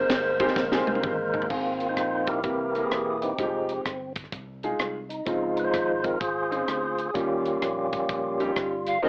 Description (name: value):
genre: uptempo gospel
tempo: 128 BPM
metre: 4/4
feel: swing 65% on 8ths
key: Ab major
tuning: A4 = 440 Hz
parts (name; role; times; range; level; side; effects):
- polished pan flute; melody; 0.0-1.0, 8.9-9.1 s; C5 to F5; -29 LUFS; equal; cassette tape
- clear concert grand piano; accompaniment; 0.0-9.1 s; Ab2 to C5; -33 LUFS; equal; cassette tape
- tonewheel organ; sustained chords; 0.0-9.1 s; E3 to C5; -29 LUFS; equal; overdrive, fast rotary speaker, cassette tape
- fingered electric bass; bass; 0.0-9.0 s; E1 to Eb2; -45 LUFS; equal; none
- crisp fusion drum kit; drums; 0.1-8.9 s; crash cymbal, hi-hat, kick drum, ride cymbal, rim click, snare drum, toms; -34 LUFS; equal; cassette tape
room: moderate booth ambience, RT60 0.2 s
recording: home recording on cassette, AM radio sound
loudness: -27 LUFS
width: mono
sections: 0.0-1.5 A section; 1.5-9.0 B section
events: drum fill 0.6-1.5; tonewheel organ solo 1.5-9.0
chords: 0.0 Abmaj9; 1.5 Ab69; 2.4 C7; 3.4 Fm9; 5.3 Dbmaj9; 7.2 Eb9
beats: 0.09 0.56 1.03 | 1.50 1.97 2.44 2.91 | 3.38 3.85 4.33 4.80 | 5.27 5.74 6.21 6.68 | 7.15 7.62 8.09 8.56 | 9.03